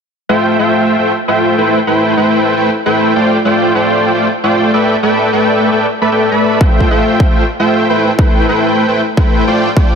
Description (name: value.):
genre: future bass.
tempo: 152 BPM.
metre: 4/4.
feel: half-time.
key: A minor.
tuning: A4 = 439 Hz.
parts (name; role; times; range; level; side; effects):
dense compressed supersaw; riff; 0.3-10.0 s; A3 to B5; -10 LUFS; equal; sidechain pumping, low-pass filter, digital delay.
electronic kick drum; drums; 6.6-9.8 s; none; -11 LUFS; equal; overdrive.
room: light reverb, digital ambience.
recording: none.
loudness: -10 LUFS.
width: side -6 dB against mid.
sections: 0.3-10.0 A section.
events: none.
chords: 0.3 Fmaj9/A; 1.7 Am7; 4.8 A9sus4; 6.6 Fmaj9/A; 8.0 Am7.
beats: | 0.29 0.69 1.08 1.48 | 1.87 2.27 2.66 3.06 | 3.45 3.85 4.24 4.63 | 5.03 5.42 5.82 6.21 | 6.61 7.00 7.40 7.79 | 8.19 8.58 8.98 9.37 | 9.77.